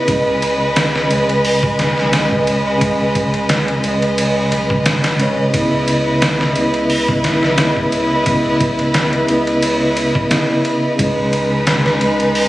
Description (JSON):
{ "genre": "trip hop", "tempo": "88 BPM", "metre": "4/4", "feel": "swing 54% on 16ths", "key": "C# minor", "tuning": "A4 = 435 Hz", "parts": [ { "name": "mellow tine electric piano", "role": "accompaniment", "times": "0.0-12.5 s", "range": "C#3 to D#5", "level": "-17 LUFS", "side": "equal", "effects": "harmonic tremolo, tape echo" }, { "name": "rich chamber violin section", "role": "sustained chords", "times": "0.0-12.5 s", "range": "G#3 to D#5", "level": "-18 LUFS", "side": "equal", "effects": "none" }, { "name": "soft dub sub bass", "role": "bass", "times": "0.1-12.5 s", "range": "G#1 to C#2", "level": "-28 LUFS", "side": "right 1 dB", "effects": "none" }, { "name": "trip hop sampler-style drum kit", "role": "drums", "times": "0.1-12.5 s", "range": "hi-hat, kick drum, ride cymbal, snare drum", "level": "-19 LUFS", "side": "equal", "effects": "none" } ], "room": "moderate spring reverb, RT60 2.2 s", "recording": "recorded on a phone in the room, club reverb, vinyl crackle, compression", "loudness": "-13 LUFS", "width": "side -16 dB against mid", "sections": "0.0-12.5 A section", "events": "none", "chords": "0.1 G#m; 5.5 C#m9; 11.0 G#m" }